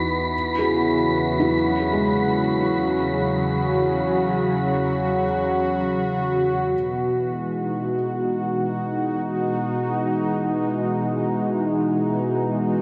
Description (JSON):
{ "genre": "ambient", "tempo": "free time", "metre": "none", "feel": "none", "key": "E major", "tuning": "A4 = 440 Hz", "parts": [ { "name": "warm analog pad", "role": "sustained chords", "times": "0.0-12.8 s", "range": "E2 to F#4", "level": "-24 LUFS", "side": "equal", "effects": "chorus, tremolo" }, { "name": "felt-muted upright piano", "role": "arpeggios", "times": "0.0-6.8 s", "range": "G#3 to C#6", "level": "-28 LUFS", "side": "equal", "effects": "delay" }, { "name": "analog drone", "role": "drone", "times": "0.0-6.8 s", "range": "E3", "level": "-32 LUFS", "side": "equal", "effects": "chorus" }, { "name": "wind-like tuned noise texture", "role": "texture", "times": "0.0-6.7 s", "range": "B5", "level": "-32 LUFS", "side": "equal", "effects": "built-in reverb" } ], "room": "wet concert hall reverb, RT60 1.9 s, digital ambience", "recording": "worn, warbling old tape, cassette tape, warbly pitch drift", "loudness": "-22 LUFS", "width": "mono", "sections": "0.0-6.7 A section; 6.7-12.8 B section", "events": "none", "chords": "0.3 F#5/E; 6.7 Emaj9" }